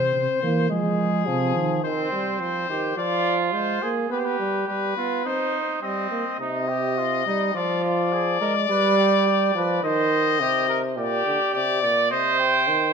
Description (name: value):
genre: classical, imitative canzona for brass ensemble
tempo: 105 BPM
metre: 4/4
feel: straight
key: C minor from 6.4 s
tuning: A4 = 440 Hz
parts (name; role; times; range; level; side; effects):
- clear trumpet; melody; 0.0-12.9 s; Ab4 to G5; -25 LUFS; left 9 dB; none
- warm euphonium; accompaniment; 0.0-12.9 s; Bb2 to C4; -24 LUFS; right 2 dB; none
- mellow tuba; bass; 0.0-1.8 s; C3 to F3; -26 LUFS; right 3 dB; none
- warm trumpet; second line; 1.9-12.9 s; C4 to D5; -25 LUFS; right 6 dB; none
room: moderate scoring stage reverb, RT60 2.0 s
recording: close, detailed microphones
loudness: -20 LUFS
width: side -6 dB against mid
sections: 0.0-6.4 A section; 6.4-12.9 B section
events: none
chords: 0.0 C; 0.7 Fm; 1.8 Cm/Eb; 3.0 Ddim/F; 4.1 G; 5.3 Cm; 7.5 Ddim/F; 8.7 G; 9.8 Cm/Eb; 11.0 Gm/Bb; 12.1 Cm